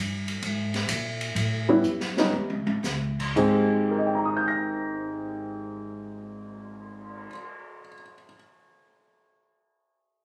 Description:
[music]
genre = jazz piano trio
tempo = 113-132 BPM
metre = 4/4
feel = swing 68% on 8ths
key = Ab major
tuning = A4 = 440 Hz
[part]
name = upright bass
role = bass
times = 0.0-7.2 s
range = Ab1 to Bb2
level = -36 LUFS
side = equal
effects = none
[part]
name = open jazz drum kit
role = drums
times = 0.3-7.5 s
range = crash cymbal, cymbal swell, hi-hat, kick drum, ride cymbal, snare drum, toms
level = -34 LUFS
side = equal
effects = none
[part]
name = warm baby grand piano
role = melody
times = 1.7-8.4 s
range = Ab2 to Bb6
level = -27 LUFS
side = equal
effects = none
[sound]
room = light reverb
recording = recorded on a phone in the room, studio ambience, compression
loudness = -26 LUFS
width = mono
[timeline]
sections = 0.0-3.4 A section; 3.4-7.6 B section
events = slowing down 0.0-3.4; drum fill 1.8-2.8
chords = 0.0 Bb5; 1.4 A; 3.4 Abmaj7

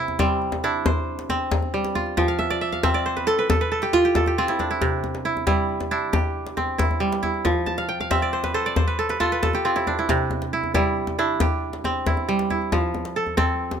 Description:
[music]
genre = west african traditional, West African string and xylophone music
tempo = 91 BPM (dotted quarters)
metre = 12/8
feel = straight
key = C major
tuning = A4 = 440 Hz
[part]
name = kora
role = arpeggios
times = 0.0-13.8 s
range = C3 to A5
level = -22 LUFS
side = right 2 dB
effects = none
[part]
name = djembe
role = percussion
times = 0.1-13.8 s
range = none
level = -26 LUFS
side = left 2 dB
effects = none
[sound]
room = light reverb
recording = close, detailed microphones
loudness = -20 LUFS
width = side -8 dB against mid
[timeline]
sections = 0.0-4.8 A section; 4.8-13.8 B section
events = kora fill 2.2-4.8, 7.7-10.1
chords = 0.0 C; 2.2 F; 4.8 C; 7.5 F; 10.1 C; 12.7 F

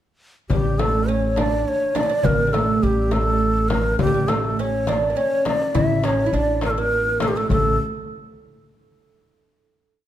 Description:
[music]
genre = Arabic maqam ensemble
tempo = 69 BPM (dotted quarters)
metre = 6/8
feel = straight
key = A maqam hijaz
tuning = A4 = 440 Hz
[part]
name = breathy ney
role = melody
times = 0.5-7.8 s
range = G4 to E5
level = -21 LUFS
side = equal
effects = none
[part]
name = oud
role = second line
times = 0.5-7.8 s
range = G3 to E4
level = -25 LUFS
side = right 5 dB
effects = none
[part]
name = upright bass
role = bass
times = 0.5-7.8 s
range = A1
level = -24 LUFS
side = equal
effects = none
[part]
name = darbuka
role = percussion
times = 0.5-7.8 s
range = none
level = -27 LUFS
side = left 4 dB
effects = none
[part]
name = frame drum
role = percussion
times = 0.5-7.8 s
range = none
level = -28 LUFS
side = left 4 dB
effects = none
[sound]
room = moderate recital hall reverb, RT60 1.7 s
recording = none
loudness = -18 LUFS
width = side -11 dB against mid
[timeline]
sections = 0.5-7.5 A section; 7.5-9.2 final note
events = none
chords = none

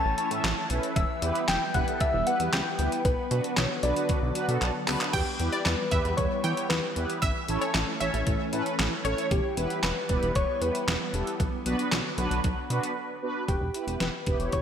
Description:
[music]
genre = synth-pop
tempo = 115 BPM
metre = 4/4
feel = straight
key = E dorian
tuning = A4 = 440 Hz
[part]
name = soft struck synth lead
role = melody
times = 0.0-14.6 s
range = G4 to A5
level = -31 LUFS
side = left 2 dB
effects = chorus, digital delay
[part]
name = soft string machine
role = sustained chords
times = 0.0-13.5 s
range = D3 to C#4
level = -34 LUFS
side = equal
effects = phaser, ensemble chorus
[part]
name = chorused synth bass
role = bass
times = 0.1-14.6 s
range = E1 to E3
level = -30 LUFS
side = equal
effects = none
[part]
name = mellow synth brass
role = accompaniment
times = 0.2-14.6 s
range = B3 to E5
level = -32 LUFS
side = right 2 dB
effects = chorus, phaser
[part]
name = detuned 8-bit digital drum machine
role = drums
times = 0.2-14.6 s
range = crash cymbal, handclaps, hi-hat, kick drum, snare drum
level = -29 LUFS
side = equal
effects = gated reverb
[part]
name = analog pluck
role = second line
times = 5.1-9.1 s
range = C#5 to G5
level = -33 LUFS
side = equal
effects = chorus, digital delay
[sound]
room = moderate lush hall reverb, RT60 1.9 s, digital ambience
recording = bright 1980s-style digital production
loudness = -25 LUFS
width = side -8 dB against mid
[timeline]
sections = 0.0-5.1 A section; 5.1-13.5 B section; 13.5-14.6 C section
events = drum fill 4.6-5.1; break 13.0-13.5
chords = 0.0 A; 1.0 Em; 3.0 Bm; 5.1 Em; 7.2 A; 9.3 Em; 11.4 Bm; 13.5 Em

